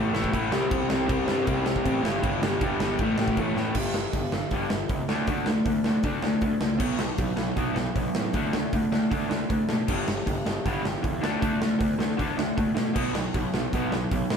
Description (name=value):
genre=punk rock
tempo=156 BPM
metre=4/4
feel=straight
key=D major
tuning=A4 = 440 Hz
part: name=raw garage guitar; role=riff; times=0.0-14.4 s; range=G2 to D4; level=-26 LUFS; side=equal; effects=overdrive
part: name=fuzz picked electric bass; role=bass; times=0.0-14.4 s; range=G1 to B2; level=-33 LUFS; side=equal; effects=overdrive
part: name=big rock drum kit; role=drums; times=0.1-14.4 s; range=crash cymbal, hi-hat, kick drum, snare drum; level=-29 LUFS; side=right 1 dB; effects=none
room=light reverb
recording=band playing live in one room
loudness=-23 LUFS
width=side -6 dB against mid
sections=0.0-3.8 A section; 3.8-14.4 B section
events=drum fill 3.6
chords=0.0 A5; 0.5 C5; 2.0 G5; 3.0 A5; 3.8 G5; 5.1 D5; 6.8 B5; 8.3 D5; 9.9 G5; 11.2 D5; 13.0 B5